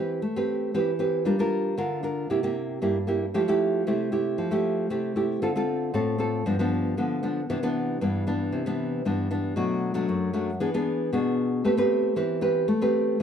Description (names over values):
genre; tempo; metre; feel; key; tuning
samba; 116 BPM; 4/4; straight; A minor; A4 = 440 Hz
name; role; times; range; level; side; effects
nylon-string guitar; solo; 0.0-13.2 s; F#2 to B4; -24 LUFS; equal; none
room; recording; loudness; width
moderate large studio reverb, RT60 0.9 s; band playing live in one room; -24 LUFS; side -8 dB against mid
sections
0.0-13.2 A section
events
none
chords
0.0 Am9; 1.3 Gm7; 2.3 C7; 3.3 Fmaj9; 5.4 Dm7; 6.5 G7; 7.5 Cmaj9; 9.6 Bm7; 10.6 E7; 11.7 Am9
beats
0.22 0.74 | 1.26 1.78 2.30 2.82 | 3.34 3.86 4.38 4.90 | 5.42 5.94 6.46 6.98 | 7.50 8.01 8.53 9.05 | 9.57 10.09 10.61 11.13 | 11.65 12.17 12.69 13.21